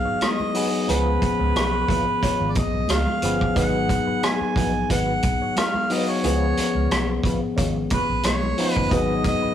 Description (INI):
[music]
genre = lush 1970s-style soul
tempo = 90 BPM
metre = 4/4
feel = swing 54% on 16ths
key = unclear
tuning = A4 = 440 Hz
[part]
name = mellow harmonica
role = melody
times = 0.0-9.5 s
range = B4 to G#5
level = -25 LUFS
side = right 2 dB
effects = none
[part]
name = barky tine electric piano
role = accompaniment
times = 0.0-9.5 s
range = E#3 to G#4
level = -25 LUFS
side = left 3 dB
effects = overdrive
[part]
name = vintage muted fingered electric bass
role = bass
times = 0.0-9.5 s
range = G1 to C#2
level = -26 LUFS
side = equal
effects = none
[part]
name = mellow electric guitar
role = riff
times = 0.1-9.5 s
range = C#4 to C#5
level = -31 LUFS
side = right 2 dB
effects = wah, tremolo
[part]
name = vintage drum kit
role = drums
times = 0.2-9.4 s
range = hi-hat, kick drum, rim click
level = -25 LUFS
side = equal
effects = none
[part]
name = congas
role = percussion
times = 0.2-9.4 s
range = none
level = -34 LUFS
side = right 1 dB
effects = none
[sound]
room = moderate stone room reverb, RT60 1.1 s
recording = rough rehearsal-room recording, warm saturation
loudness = -19 LUFS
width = side -10 dB against mid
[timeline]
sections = 0.0-9.5 A section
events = none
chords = 0.0 G#m7; 0.9 C#7; 3.6 G#m7; 6.2 C#7; 8.9 G#m7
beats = 0.22 | 0.89 1.55 2.22 2.89 | 3.56 4.23 4.90 5.57 | 6.24 6.91 7.57 8.24 | 8.91